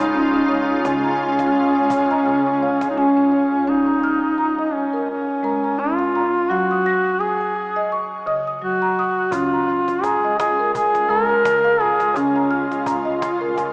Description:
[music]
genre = world meditative, meditative tuned percussion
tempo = 85 BPM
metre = 4/4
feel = swing 55% on 16ths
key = Db major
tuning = A4 = 443 Hz
[part]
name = warm duduk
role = melody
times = 0.0-12.9 s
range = Db4 to Bb4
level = -21 LUFS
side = equal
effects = shimmer reverb, analog delay
[part]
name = shimmering ambient pad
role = sustained chords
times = 0.0-3.6, 10.1-13.7 s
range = Db3 to F4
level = -30 LUFS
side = equal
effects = chorus, built-in reverb, shimmer reverb
[part]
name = marimba with soft mallets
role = arpeggios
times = 0.0-13.7 s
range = Db3 to Bb6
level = -25 LUFS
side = equal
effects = shimmer reverb
[part]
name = cajon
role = percussion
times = 0.0-3.1, 9.3-13.7 s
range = none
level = -37 LUFS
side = equal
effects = analog delay
[sound]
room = wet echo chamber reverb, RT60 1.8 s, studio reverb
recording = echo-heavy mix, cassette tape, small speaker sound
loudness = -19 LUFS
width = mono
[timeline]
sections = 0.0-3.7 A section; 3.7-13.7 B section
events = none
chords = 0.0 Db; 6.5 Gb; 9.3 Db

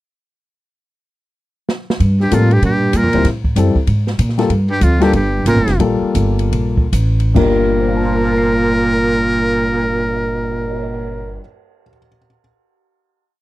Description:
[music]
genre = jazz, small-group swing and bop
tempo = 134-192 BPM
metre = 4/4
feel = swing 63% on 8ths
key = G minor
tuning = A4 = 440 Hz
[part]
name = open jazz drum kit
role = drums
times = 1.7-10.8 s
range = crash cymbal, cymbal swell, hi-hat, kick drum, ride cymbal, snare drum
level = -23 LUFS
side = right 1 dB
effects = none
[part]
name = upright bass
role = bass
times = 2.0-11.4 s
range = F1 to Bb2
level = -16 LUFS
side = equal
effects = none
[part]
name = trumpet with metal mute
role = melody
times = 2.2-11.4 s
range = F4 to Bb4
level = -20 LUFS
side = left 1 dB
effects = none
[part]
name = warm baritone saxophone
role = second line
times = 2.2-11.4 s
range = F2 to Bb2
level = -18 LUFS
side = right 2 dB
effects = none
[part]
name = warm concert grand piano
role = accompaniment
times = 2.3-12.4 s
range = G2 to C7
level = -19 LUFS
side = left 4 dB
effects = none
[sound]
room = little or no reverb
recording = dry, close 1970s-style studio recording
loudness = -13 LUFS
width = side -17 dB against mid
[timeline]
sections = 0.7-2.0 pickup bar; 2.0-7.3 A section; 7.3-10.9 final chord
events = drum fill 1.7-2.0; slowing down 4.5-7.3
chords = 0.7 N.C.; 2.0 Gm9; 3.2 Am7; 3.9 Absus2; 4.5 Gm9

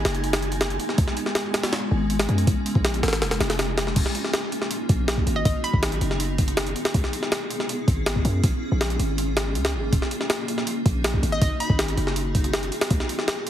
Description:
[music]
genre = drum and bass, jungle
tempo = 161 BPM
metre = 4/4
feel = straight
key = Eb minor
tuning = A4 = 440 Hz
[part]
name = hollow square pluck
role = melody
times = 0.0, 5.4-6.2, 11.3-12.0 s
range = Eb5 to Cb6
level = -30 LUFS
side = equal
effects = chorus, cassette tape, dub echo
[part]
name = granular cloud pad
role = sustained chords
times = 0.0-13.5 s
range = Ab3 to Ab4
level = -29 LUFS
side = equal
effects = built-in reverb
[part]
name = warm 808-style bass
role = bass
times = 0.0-13.0 s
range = Eb1 to Gb2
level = -25 LUFS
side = equal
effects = none
[part]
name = wind-like tuned noise texture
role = texture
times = 0.0-4.0 s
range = Ab5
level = -39 LUFS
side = right 1 dB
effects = built-in reverb
[part]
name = jungle sampler-style drum kit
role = drums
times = 0.1-13.5 s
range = crash cymbal, hi-hat, kick drum, snare drum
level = -24 LUFS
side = equal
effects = none
[sound]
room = digital ambience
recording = heavily compressed radio sound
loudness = -21 LUFS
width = side -11 dB against mid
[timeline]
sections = 0.0-4.0 A section; 4.0-13.5 A section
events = drop 0.0-4.0, 4.0-13.5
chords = 0.0 Abm7; 1.0 Dbm7; 2.5 Bbm7; 4.0 Ebm7; 5.5 Abm7; 6.9 Dbm7; 8.4 Bbm7; 9.9 Ebm7; 11.4 Abm7; 12.9 Dbm7

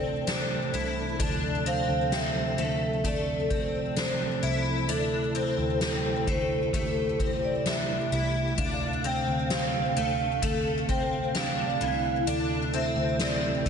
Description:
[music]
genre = dream pop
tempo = 65 BPM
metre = 4/4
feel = straight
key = D minor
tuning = A4 = 440 Hz
[part]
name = vibraphone with medium hard mallets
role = melody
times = 0.0-13.7 s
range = A4 to G5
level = -32 LUFS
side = right 3 dB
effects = ping-pong delay, slapback echo
[part]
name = mellow tonewheel organ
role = sustained chords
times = 0.0-13.7 s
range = C3 to F5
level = -32 LUFS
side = right 2 dB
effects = chorus vibrato, stopped rotary speaker
[part]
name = picked twelve-string acoustic guitar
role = arpeggios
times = 0.0-13.7 s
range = E3 to E4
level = -30 LUFS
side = left 5 dB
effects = ensemble chorus, ping-pong delay, slapback echo
[part]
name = vintage muted picked electric bass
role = bass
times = 0.0-13.7 s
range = C2 to D2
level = -34 LUFS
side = equal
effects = none
[part]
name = soft-mallet drum kit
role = drums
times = 0.3-13.7 s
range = hi-hat, kick drum, snare drum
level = -33 LUFS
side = equal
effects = none
[sound]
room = wet concert hall reverb, RT60 2.2 s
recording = big arena sound, nothing above 10.9 kHz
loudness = -25 LUFS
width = side -7 dB against mid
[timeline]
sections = 0.0-13.7 A section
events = none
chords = 0.0 Am/D; 1.2 Dm7; 4.9 Am/D; 8.6 Dm7; 12.3 Am/D

